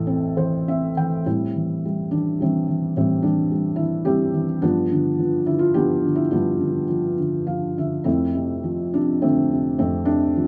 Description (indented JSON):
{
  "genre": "classical, lyrical solo piano",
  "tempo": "105 BPM",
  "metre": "3/4",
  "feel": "uneven beats, rubato",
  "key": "A minor",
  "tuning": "A4 = 441 Hz",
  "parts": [
    { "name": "felt-muted upright piano", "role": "solo", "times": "0.0-10.5 s", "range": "A1 to G5", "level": "-22 LUFS", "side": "equal", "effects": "none" }
  ],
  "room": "light reverb",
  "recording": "dark, warm production",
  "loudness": "-22 LUFS",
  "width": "mono",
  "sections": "0.0-1.3 A section; 1.3-10.5 B section",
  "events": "felt piano fill 0.1-1.3, 7.2-8.1",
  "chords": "0.0 Am; 1.3 Am7; 4.6 G7; 8.1 Dm7/F"
}